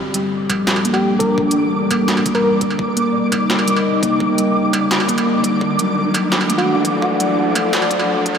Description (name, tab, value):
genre	half-time drum and bass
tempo	170 BPM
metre	4/4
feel	half-time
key	G harmonic minor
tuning	A4 = 440 Hz
part	dark analog pad	sustained chords	0.0-8.4 s	G3 to G5	-20 LUFS	equal	chorus, phaser, sidechain pumping
part	saturated sub bass	bass	0.0-8.4 s	Eb1 to Eb2	-34 LUFS	equal	none
part	riser	sound effects	0.0-8.4 s	none	-28 LUFS	right 1 dB	none
part	flickering grainy texture	texture	0.4-8.4 s	D6	-24 LUFS	right 1 dB	built-in reverb, analog chorus
part	kalimba	arpeggios	0.1-8.4 s	F#3 to Bb3	-19 LUFS	left 1 dB	diffuse ambient delay
part	industrial drum kit	drums	0.1-8.4 s	hi-hat, snare drum, struck metal	-22 LUFS	right 1 dB	high-pass filter on hats, high-pass filter on snare, high-pass filter on perc
part	electronic kick drum	drums	0.5-8.3 s	none	-29 LUFS	equal	overdrive, high-pass filter on kick, high-pass filter on room
part	soft struck synth lead	melody	0.9-2.5, 6.6-7.5 s	F#4 to Bb4	-23 LUFS	left 1 dB	chorus, analog delay
room	wet cathedral reverb, RT60 6.1 s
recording	dreamy mix soaked in reverb, high-pass filter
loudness	-14 LUFS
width	side -7 dB against mid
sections	0.0-8.4 A section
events	build-up 0.0-8.4; riser 0.0-8.4; filter sweep on soft synth lead 0.0-8.4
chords	0.0 Gm; 2.8 Eb; 5.6 D